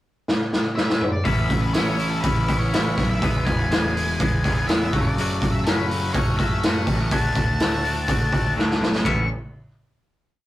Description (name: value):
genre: quiet-loud alternative rock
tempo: 124 BPM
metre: 4/4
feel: straight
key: A major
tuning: A4 = 440 Hz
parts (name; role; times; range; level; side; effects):
- raw garage drum kit; drums; 0.3-9.2 s; hi-hat, kick drum, ride cymbal, snare drum, toms; -21 LUFS; equal; none
- octave-fuzz lead guitar; melody; 0.8-9.3 s; A4 to C#6; -28 LUFS; left 1 dB; distortion
- twangy electric guitar; arpeggios; 1.2-9.2 s; E2 to G#4; -27 LUFS; left 2 dB; none
- fuzz picked electric bass; bass; 1.3-9.3 s; E1 to D2; -27 LUFS; right 1 dB; overdrive
room: light reverb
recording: rough rehearsal-room recording, warm saturation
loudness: -19 LUFS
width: side -15 dB against mid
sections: 0.0-1.3 pickup bar; 1.3-9.0 verse; 9.0-10.5 final chord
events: drum fill 0.3-1.3, 8.6-9.0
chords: 0.0 N.C.; 1.3 Aadd9; 3.2 E; 4.9 F#m; 7.1 D; 9.0 Aadd9